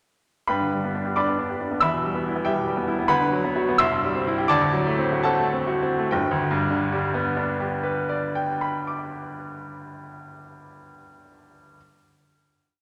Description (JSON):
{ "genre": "classical, virtuoso piano study", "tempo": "64-96 BPM (dotted quarters)", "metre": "6/8", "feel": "rubato", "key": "G major", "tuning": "A4 = 440 Hz", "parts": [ { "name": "bright grand piano", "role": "solo", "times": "0.5-11.8 s", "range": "G1 to E6", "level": "-24 LUFS", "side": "equal", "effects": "none" } ], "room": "wet concert hall reverb, RT60 2.1 s", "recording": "none", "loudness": "-24 LUFS", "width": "mono", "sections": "0.5-6.1 A section; 6.1-9.5 final chord", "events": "slowing down 2.5-6.1", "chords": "0.5 G; 1.8 Em; 3.1 Bm/D; 3.8 C; 4.5 D7; 6.1 G" }